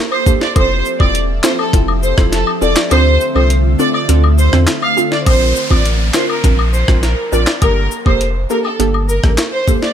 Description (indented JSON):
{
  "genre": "dancehall",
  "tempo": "102 BPM",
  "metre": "4/4",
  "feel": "straight",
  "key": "unclear",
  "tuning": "A4 = 441 Hz",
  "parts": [
    { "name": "glassy wavetable pluck", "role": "accompaniment", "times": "0.0-9.9 s", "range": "Bb3 to Bb4", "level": "-20 LUFS", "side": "right 2 dB", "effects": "chorus" },
    { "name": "ethereal airy pad", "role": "sustained chords", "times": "0.0-5.2 s", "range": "D3 to E5", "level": "-23 LUFS", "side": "equal", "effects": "ensemble chorus, built-in reverb, sidechain pumping" },
    { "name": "warm symphonic violin section", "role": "melody", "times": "0.1-9.9 s", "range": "A4 to F5", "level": "-18 LUFS", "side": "right 1 dB", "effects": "tape echo" },
    { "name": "woodblock and cabasa", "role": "percussion", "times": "0.1-9.8 s", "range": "none", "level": "-24 LUFS", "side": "left 9 dB", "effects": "none" },
    { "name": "jungle sampler-style drum kit", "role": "drums", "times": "0.3-9.9 s", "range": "handclaps, hi-hat, kick drum, rim click, snare drum", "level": "-15 LUFS", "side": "equal", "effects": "none" },
    { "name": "saturated sub bass", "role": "bass", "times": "0.6-9.4 s", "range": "E1 to E2", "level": "-14 LUFS", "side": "equal", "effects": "none" },
    { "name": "downlifter", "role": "sound effects", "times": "5.3-9.9 s", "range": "none", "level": "-25 LUFS", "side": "equal", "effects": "none" }
  ],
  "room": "digital ambience",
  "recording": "none",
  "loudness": "-11 LUFS",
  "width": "side -9 dB against mid",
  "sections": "0.0-5.3 A section; 5.3-9.9 B section",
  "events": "kick muted 2.9-5.3",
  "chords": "0.0 Gmadd9; 0.6 Fmaj7; 2.9 Dm7; 5.3 Bbadd9; 7.6 Gmadd9"
}